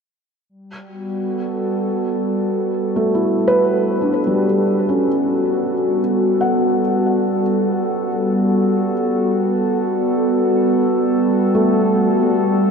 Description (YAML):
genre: ambient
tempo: 69 BPM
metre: 4/4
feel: straight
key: G lydian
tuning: A4 = 440 Hz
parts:
  - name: warbly tape-like pad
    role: sustained chords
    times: 1.0-12.7 s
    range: G3 to A4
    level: -17 LUFS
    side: equal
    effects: chorus, built-in reverb
  - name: felt-muted upright piano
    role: arpeggios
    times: 3.0-12.7 s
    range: G3 to F#5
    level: -20 LUFS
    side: equal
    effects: ping-pong delay
room: wet huge ambient reverb, RT60 7.4 s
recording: none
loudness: -15 LUFS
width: side -6 dB against mid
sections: 0.5-12.7 A section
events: none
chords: 0.5 Gmaj9